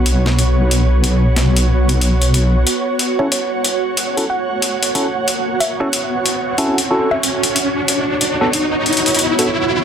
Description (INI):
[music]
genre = glitch hop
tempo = 92 BPM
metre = 4/4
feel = swing 62% on 16ths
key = F# minor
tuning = A4 = 440 Hz
[part]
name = bright tine electric piano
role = stabs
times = 0.0-9.5 s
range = B3 to A4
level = -22 LUFS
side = equal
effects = phaser, low-pass filter, tape echo
[part]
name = wobble bass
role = bass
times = 0.0-2.6 s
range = B1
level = -13 LUFS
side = equal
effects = chorus, tube saturation
[part]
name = ethereal airy pad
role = texture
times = 0.0-9.8 s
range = B3 to F#5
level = -20 LUFS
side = right 2 dB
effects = ensemble chorus, built-in reverb
[part]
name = boom bap sampler-style drum kit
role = drums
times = 0.1-9.5 s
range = hi-hat, snare drum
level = -19 LUFS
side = left 2 dB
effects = overdrive
[part]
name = riser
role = sound effects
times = 4.4-9.8 s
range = none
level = -21 LUFS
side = left 1 dB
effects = none
[part]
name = woody wave-folded pluck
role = melody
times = 3.2-7.6 s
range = C#5 to F#5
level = -24 LUFS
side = left 1 dB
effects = chorus, tape echo
[sound]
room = light reverb, digital ambience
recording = dense, heavily limited modern master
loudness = -14 LUFS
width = side -8 dB against mid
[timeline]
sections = 0.0-2.7 A section; 2.7-9.8 B section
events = build-up 2.7-9.8; filter sweep on tine electric piano 2.7-9.8; riser 4.4-9.8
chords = 0.0 Bm7; 2.7 F#m7; 7.9 B5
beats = | 0.06 0.71 1.36 2.02 | 2.67 3.32 3.97 4.62 | 5.28 5.93 6.58 7.23 | 7.88 8.54 9.19